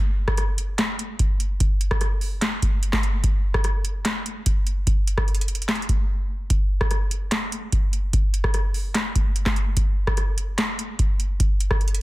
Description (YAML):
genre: hip hop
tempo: 147 BPM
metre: 4/4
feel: half-time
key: none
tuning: none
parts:
  - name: booming analog drum machine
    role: drums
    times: 0.3-12.0 s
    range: handclaps, hi-hat, kick drum, rim click, snare drum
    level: -21 LUFS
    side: equal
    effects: overdrive
room: little or no reverb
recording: dense, heavily limited modern master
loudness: -20 LUFS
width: side -18 dB against mid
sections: 0.0-6.5 A section; 6.5-12.0 B section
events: break 6.1-6.5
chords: none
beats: 0.38 0.79 1.20 | 1.60 2.01 2.42 2.83 | 3.24 3.65 4.05 4.46 | 4.87 5.28 5.69 6.09 | 6.50 6.91 7.32 7.73 | 8.13 8.54 8.95 9.36 | 9.77 10.18 10.58 10.99 | 11.40 11.81